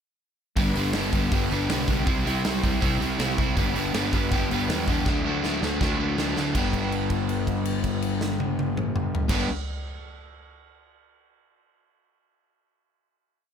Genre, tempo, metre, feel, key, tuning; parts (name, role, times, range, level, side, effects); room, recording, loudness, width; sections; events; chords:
punk rock; 161 BPM; 4/4; straight; G major; A4 = 435 Hz
crunchy overdriven guitar; riff; 0.6-9.5 s; G2 to E4; -25 LUFS; left 1 dB
fuzz picked electric bass; bass; 0.6-9.5 s; G1 to E2; -30 LUFS; equal; overdrive
big rock drum kit; drums; 0.6-9.4 s; crash cymbal, hi-hat, kick drum, snare drum, toms; -28 LUFS; equal
little or no reverb; -22 LUFS; side -8 dB against mid
0.6-6.5 verse; 6.5-9.5 final chord
drum fill 5.1-6.5; held note 6.5-9.3
0.6 G; 2.1 C; 3.6 G; 5.1 D; 6.5 G